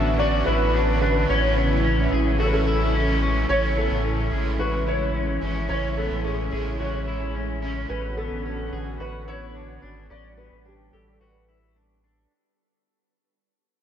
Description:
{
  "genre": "dream pop",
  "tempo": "109 BPM",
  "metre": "4/4",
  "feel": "straight",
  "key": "A major",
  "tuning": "A4 = 440 Hz",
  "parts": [
    { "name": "felt-muted upright piano", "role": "melody", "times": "0.0-12.0 s", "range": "G4 to E5", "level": "-27 LUFS", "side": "equal", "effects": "ensemble chorus, ping-pong delay" },
    { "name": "crunchy overdriven guitar", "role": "accompaniment", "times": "0.0-7.9 s", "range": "A2 to F#4", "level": "-32 LUFS", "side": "right 4 dB", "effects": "tremolo, ensemble chorus" },
    { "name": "lush unison pad", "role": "sustained chords", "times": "0.0-12.3 s", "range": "C#3 to F#4", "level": "-29 LUFS", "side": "equal", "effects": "chorus" },
    { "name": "electric guitar at the edge of break-up", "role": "arpeggios", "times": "0.0-12.3 s", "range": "B3 to A4", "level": "-30 LUFS", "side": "left 4 dB", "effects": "lush chorus, ping-pong delay" },
    { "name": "saturated sub bass", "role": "bass", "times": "0.0-12.3 s", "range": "G#1 to A1", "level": "-26 LUFS", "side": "equal", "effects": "none" }
  ],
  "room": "moderate huge ambient reverb, RT60 8.7 s",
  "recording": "dreamy mix soaked in reverb",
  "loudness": "-21 LUFS",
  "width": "side -9 dB against mid",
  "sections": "0.0-3.5 A section; 3.5-12.3 B section",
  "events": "fade-out 3.5-12.3",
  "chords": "0.0 Bm7/A; 1.3 Amaj7; 7.9 Bm7/A; 10.1 Gmaj7/A"
}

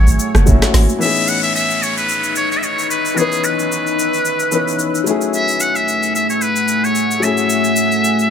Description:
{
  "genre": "amapiano",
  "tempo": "111 BPM",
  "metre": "4/4",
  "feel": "swing 55% on 16ths",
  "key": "C# minor",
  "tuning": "A4 = 439 Hz",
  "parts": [
    { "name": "trumpet with metal mute", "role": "melody", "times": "0.0-8.3 s", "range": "G#4 to F#5", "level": "-18 LUFS", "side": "left 1 dB", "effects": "digital delay" },
    { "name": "clear baby grand piano", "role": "accompaniment", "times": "0.0-8.3 s", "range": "E3 to B4", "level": "-22 LUFS", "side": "left 6 dB", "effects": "none" },
    { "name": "deep dark ambient pad", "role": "sustained chords", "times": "0.0-8.3 s", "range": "A3 to E6", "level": "-20 LUFS", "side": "equal", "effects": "chorus, built-in reverb" },
    { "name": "deep log drum bass", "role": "bass", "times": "0.0-0.9 s", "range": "F#1 to G#1", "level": "-12 LUFS", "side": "equal", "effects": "none" },
    { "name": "afro-pop drum kit", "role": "drums", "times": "0.1-8.3 s", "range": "hi-hat, kick drum, rim click, shaker, snare drum", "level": "-20 LUFS", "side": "equal", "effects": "none" },
    { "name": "congas", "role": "percussion", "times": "0.3-1.0 s", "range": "none", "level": "-24 LUFS", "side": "right 9 dB", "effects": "none" },
    { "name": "downlifter", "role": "sound effects", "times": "1.0-5.3 s", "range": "none", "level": "-24 LUFS", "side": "left 2 dB", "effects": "none" }
  ],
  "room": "light reverb, digital ambience",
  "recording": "none",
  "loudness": "-13 LUFS",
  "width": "side -8 dB against mid",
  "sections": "0.0-1.0 A section; 1.0-8.3 B section",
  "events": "drop 0.0-1.0",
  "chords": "0.0 F#m9; 1.0 C#m9; 5.1 F#m9"
}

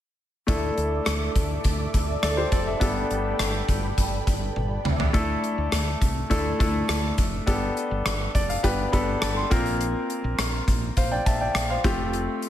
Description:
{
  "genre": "1980s-style pop",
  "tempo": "103 BPM",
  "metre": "4/4",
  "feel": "straight",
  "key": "D minor",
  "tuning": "A4 = 439 Hz",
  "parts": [
    { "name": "clear concert grand piano", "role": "accompaniment", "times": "0.5-12.5 s", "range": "A3 to C6", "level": "-26 LUFS", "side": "left 1 dB", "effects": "none" },
    { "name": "string machine, cellos", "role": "sustained chords", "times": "0.5-5.1 s", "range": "A4 to D6", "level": "-32 LUFS", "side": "right 1 dB", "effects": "phaser, ensemble chorus" },
    { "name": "woody fretless electric bass", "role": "bass", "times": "0.5-12.3 s", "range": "F1 to D2", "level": "-29 LUFS", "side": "equal", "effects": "tube saturation" },
    { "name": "gated 80s drum kit", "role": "drums", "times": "0.5-12.5 s", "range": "hi-hat, kick drum, rim click, toms", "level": "-25 LUFS", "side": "equal", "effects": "gated reverb" }
  ],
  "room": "light reverb, studio ambience",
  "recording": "none",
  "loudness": "-22 LUFS",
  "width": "side -11 dB against mid",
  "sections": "0.5-5.1 A section; 5.1-12.5 B section",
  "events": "drum fill 4.6-5.1; grand piano fill 8.1-9.8",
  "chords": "0.5 Dsus2; 2.8 Gadd9; 4.9 Dsus2; 7.5 Gadd9; 9.5 Bbsus2; 11.8 Fadd9"
}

